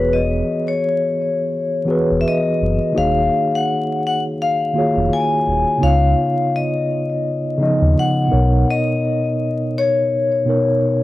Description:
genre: lo-fi hip hop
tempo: 84 BPM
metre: 4/4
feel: swing 57% on 16ths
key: Eb minor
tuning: A4 = 440 Hz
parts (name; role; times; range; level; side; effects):
- vibraphone with hard mallets; melody; 0.0-11.0 s; B4 to Ab5; -19 LUFS; left 4 dB; cassette tape
- mellow tine electric piano; accompaniment; 0.0-11.0 s; B2 to Eb5; -19 LUFS; right 1 dB; medium stereo tremolo, cassette tape
- sub bass with octave; bass; 0.0-8.6 s; Eb1 to Eb2; -18 LUFS; equal; tube saturation
room: light reverb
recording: home recording on cassette, vinyl crackle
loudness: -15 LUFS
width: side -16 dB against mid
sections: 0.0-11.0 A section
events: none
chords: 0.0 E6; 3.0 Ebm11; 5.8 Db9; 8.3 Bmaj7

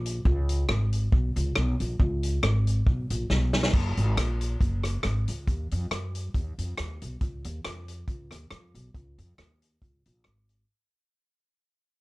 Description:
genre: ska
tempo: 138 BPM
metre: 4/4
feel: swing 55% on 8ths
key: unclear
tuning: A4 = 441 Hz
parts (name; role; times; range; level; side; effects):
- upright bass; bass; 0.0-10.6 s; Gb1 to Gb2; -27 LUFS; equal; none
- vintage drum kit; drums; 0.1-10.6 s; crash cymbal, hi-hat, kick drum, rim click, snare drum; -28 LUFS; equal; none
room: little or no reverb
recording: none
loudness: -24 LUFS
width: side -21 dB against mid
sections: 0.0-3.7 A section; 3.7-10.7 B section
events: drum fill 3.3-3.7; fade-out 3.7-10.7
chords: none

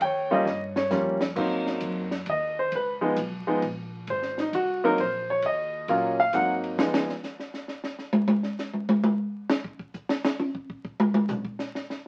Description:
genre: jazz piano trio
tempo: 133 BPM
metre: 3/4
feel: swing 67% on 8ths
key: Ab major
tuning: A4 = 438 Hz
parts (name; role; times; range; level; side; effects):
- warm concert grand piano; melody; 0.0-7.1 s; F3 to G5; -27 LUFS; equal; none
- upright bass; bass; 0.0-7.1 s; Ab1 to Bb2; -41 LUFS; equal; none
- compact cocktail drum kit; drums; 0.0-12.1 s; crash cymbal, hi-hat, kick drum, ride cymbal, snare drum, toms; -30 LUFS; equal; none
room: moderate studio reverb, RT60 0.5 s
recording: very old 78 rpm record, vinyl crackle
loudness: -27 LUFS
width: mono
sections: 0.0-1.4 A section; 1.4-12.1 B section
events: drum fill 0.5-1.4; grand piano solo 1.4-12.1; drum solo 6.8-12.1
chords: 0.0 Eb9; 1.4 Ab9; 2.7 Db9; 4.1 Ab9; 5.4 Ebm7; 6.3 Ab9; 6.8 Db9; 8.1 N.C.

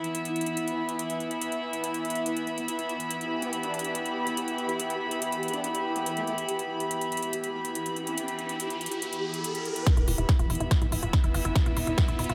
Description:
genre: psychedelic trance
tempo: 142 BPM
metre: 4/4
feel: straight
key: E minor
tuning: A4 = 437 Hz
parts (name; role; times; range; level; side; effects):
- bubbling stepped-filter texture; sustained chords; 0.0-12.3 s; E3 to G4; -36 LUFS; equal; chorus, built-in reverb, vintage 12-bit sampler grit, sidechain pumping
- big-room dance drum kit; drums; 0.0-12.3 s; hi-hat, snare drum; -38 LUFS; equal; none
- dark studio string section; texture; 0.0-12.3 s; B3 to B5; -34 LUFS; equal; sidechain pumping
- formant-sweep wobble bass; second line; 3.4-6.3 s; A3 to E4; -44 LUFS; equal; subtle chorus, sidechain pumping, high-pass filter, dub echo
- riser; sound effects; 7.6-12.3 s; none; -41 LUFS; equal; none
- unison pluck; riff; 9.9-12.3 s; E4 to F4; -38 LUFS; equal; sidechain pumping, tape echo
- electronic kick drum; drums; 9.9-12.1 s; none; -25 LUFS; equal; none
- tight sequencer bass; bass; 10.0-12.3 s; D1 to G1; -33 LUFS; equal; tube saturation
room: moderate lush hall reverb, RT60 1.8 s, digital ambience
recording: none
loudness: -29 LUFS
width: mono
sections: 0.0-9.9 A section; 9.9-12.3 B section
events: riser 7.6-9.9, 9.9-12.3; build-up 9.9-12.3; drum fill 9.9-12.3; filter sweep on synth arpeggio sound 9.9-12.3; filter sweep 9.9-12.3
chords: 0.0 E5

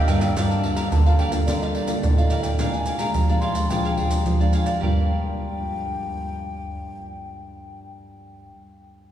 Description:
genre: samba and choro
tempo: 108 BPM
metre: 4/4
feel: straight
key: G minor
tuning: A4 = 440 Hz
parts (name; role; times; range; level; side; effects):
- baroque flute; melody; 0.0-7.8 s; D5 to C6; -31 LUFS; left 2 dB; none
- cavaquinho; accompaniment; 0.0-8.6 s; G4 to F5; -30 LUFS; right 3 dB; none
- nylon-string guitar; accompaniment; 0.0-8.6 s; Bb2 to A4; -30 LUFS; left 2 dB; none
- nylon-string guitar; bass; 0.0-8.5 s; G2 to F3; -27 LUFS; equal; none
- maracas, pandeiro, tamborim and surdo; percussion; 0.1-4.9 s; none; -22 LUFS; right 1 dB; none
room: wet cathedral reverb, RT60 5.1 s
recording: recorded in a church or concert hall, small room ambience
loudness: -20 LUFS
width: side -11 dB against mid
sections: 0.4-4.8 A section; 4.8-7.0 B section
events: none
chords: 0.4 Gm9; 2.6 Bb6; 4.8 Gm7

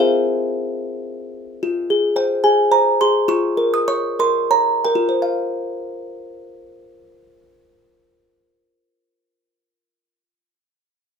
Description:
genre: classical, lullaby for music box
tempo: 82-112 BPM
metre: 3/4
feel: rubato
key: F minor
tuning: A4 = 439 Hz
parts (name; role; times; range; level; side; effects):
- music box; solo; 0.0-9.3 s; F4 to Eb6; -17 LUFS; equal; none
room: light reverb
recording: close, detailed microphones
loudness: -16 LUFS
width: side -6 dB against mid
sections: 0.0-1.6 A section; 1.6-5.2 B section; 5.2-9.6 C section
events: slowing down 0.8-5.2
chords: 0.0 Fm; 3.3 Bbm/F; 5.2 F5

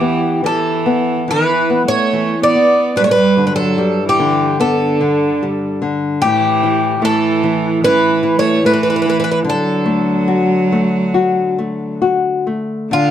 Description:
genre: fado-style ballad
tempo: 73 BPM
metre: 4/4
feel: rubato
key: D major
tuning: A4 = 440 Hz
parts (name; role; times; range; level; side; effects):
- picked twelve-string acoustic guitar; melody; 0.0-13.1 s; F4 to D5; -16 LUFS; equal; none
- clear cello; second line; 0.0-13.1 s; D3 to B3; -18 LUFS; right 4 dB; none
- nylon-string guitar; accompaniment; 0.0-13.1 s; G2 to F#4; -17 LUFS; left 3 dB; none
room: moderate studio reverb, RT60 0.6 s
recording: dark, warm production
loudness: -12 LUFS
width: side -10 dB against mid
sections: 0.0-12.9 A section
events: none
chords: 0.0 Esus4; 3.0 Gadd9; 6.2 A; 9.5 D

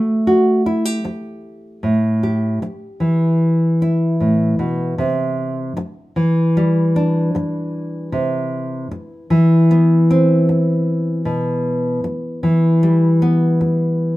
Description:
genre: folk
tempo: 76 BPM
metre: 4/4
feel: straight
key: unclear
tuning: A4 = 440 Hz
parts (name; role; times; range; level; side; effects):
- nylon-string guitar; solo; 0.0-14.2 s; A2 to G4; -15 LUFS; equal; none
room: moderate large studio reverb, RT60 0.9 s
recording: minimal, uncompressed stereo recording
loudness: -15 LUFS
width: side -17 dB against mid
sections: 0.0-5.0 A section; 5.0-14.2 B section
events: none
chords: 0.0 D (rootless); 1.8 Asus2; 5.0 Cadd9; 8.1 Cmaj7; 11.3 Em/B

